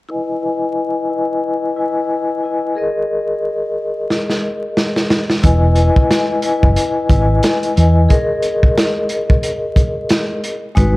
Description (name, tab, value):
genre	hip hop, boom-bap hip-hop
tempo	90 BPM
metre	4/4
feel	swing 58% on 16ths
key	unclear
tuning	A4 = 440 Hz
part	vibraphone with soft mallets	accompaniment	0.1-11.0 s	G#3 to G#5	-17 LUFS	left 2 dB	low-pass filter
part	crunchy breakbeat drum kit	drums	4.1-10.9 s	hi-hat, kick drum, snare drum	-15 LUFS	equal	none
part	hollow-body short-scale fingered electric bass	bass	5.4-11.0 s	E1 to E2	-12 LUFS	equal	none
room	small room ambience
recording	dark, warm production, vinyl crackle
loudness	-14 LUFS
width	side -20 dB against mid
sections	0.1-5.4 A section; 5.4-11.0 B section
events	filter sweep on vibraphone 0.1-5.4; drum fill 4.1-5.4; break 8.1-10.8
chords	0.1 Emaj7; 2.8 D#sus4; 5.4 Emaj7; 8.1 D#sus4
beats	| 0.10 0.77 1.44 2.10 | 2.77 3.44 4.10 4.77 | 5.44 6.10 6.77 7.44 | 8.10 8.77 9.44 10.10 | 10.77